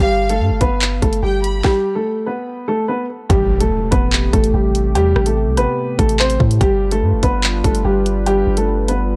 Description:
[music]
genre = hip hop, drill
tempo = 145 BPM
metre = 4/4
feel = half-time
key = A minor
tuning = A4 = 438 Hz
[part]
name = dark upright piano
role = melody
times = 0.0-9.2 s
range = G3 to C5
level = -21 LUFS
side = equal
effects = low-pass filter
[part]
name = warm studio violin section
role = second line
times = 0.0-1.6 s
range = F5 to B5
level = -26 LUFS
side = equal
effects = tape echo
[part]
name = long sustained 808-style bass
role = bass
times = 0.0-9.2 s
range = G1 to A2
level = -20 LUFS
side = equal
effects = none
[part]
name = drill drum kit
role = drums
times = 0.3-9.0 s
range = handclaps, hi-hat, kick drum, rim click, snare drum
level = -20 LUFS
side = equal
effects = none
[part]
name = dark analog pad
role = sustained chords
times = 3.8-9.2 s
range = C3 to B4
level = -27 LUFS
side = equal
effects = chorus
[part]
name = impact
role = sound effects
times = 3.3-5.0 s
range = none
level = -27 LUFS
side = equal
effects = none
[sound]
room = digital ambience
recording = dry, gritty hardware recording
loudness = -17 LUFS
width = mono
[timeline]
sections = 0.0-3.3 A section; 3.3-9.2 B section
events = stop 1.6-3.3; impact 3.3-5.0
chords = 0.0 G; 3.3 Am7; 6.6 G7

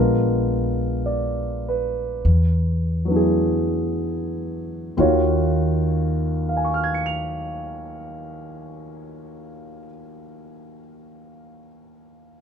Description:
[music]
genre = jazz ballad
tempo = 40-55 BPM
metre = 4/4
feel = swing 67% on 8ths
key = Eb minor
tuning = A4 = 440 Hz
[part]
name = dark concert grand piano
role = accompaniment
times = 0.0-12.4 s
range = Eb2 to F7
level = -23 LUFS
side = equal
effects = none
[part]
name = upright bass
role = bass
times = 0.0-9.8 s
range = Bb1 to E2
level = -23 LUFS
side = equal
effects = none
[sound]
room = light reverb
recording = minimal, uncompressed stereo recording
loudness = -20 LUFS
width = side -7 dB against mid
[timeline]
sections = 0.0-5.0 A section; 5.0-10.9 B section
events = slowing down 0.0-5.0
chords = 0.0 Bb7b9; 2.2 E9; 5.0 Ebm9

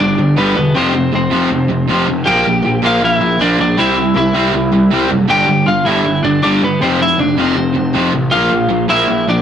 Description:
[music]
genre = punk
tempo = 158 BPM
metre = 4/4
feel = straight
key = unclear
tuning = A4 = 440 Hz
[part]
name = lightly driven lead guitar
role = melody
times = 0.0-9.4 s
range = B3 to G5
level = -15 LUFS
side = left 1 dB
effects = none
[part]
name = distorted electric guitar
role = riff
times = 0.0-9.4 s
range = F2 to C4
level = -17 LUFS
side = right 5 dB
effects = overdrive
[part]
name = overdriven semi-hollow guitar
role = riff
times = 0.0-9.4 s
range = F2 to C4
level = -18 LUFS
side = left 5 dB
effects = none
[part]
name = fuzz picked electric bass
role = bass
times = 0.0-9.4 s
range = E1 to C2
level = -19 LUFS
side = equal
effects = overdrive
[sound]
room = moderate stone room reverb, RT60 1.1 s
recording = rough rehearsal-room recording, warm saturation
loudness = -11 LUFS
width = side -9 dB against mid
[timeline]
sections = 0.0-9.4 A section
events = none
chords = 0.0 G; 0.7 F5; 2.3 Bb; 3.8 C; 5.3 G; 6.8 F5; 8.3 Bb

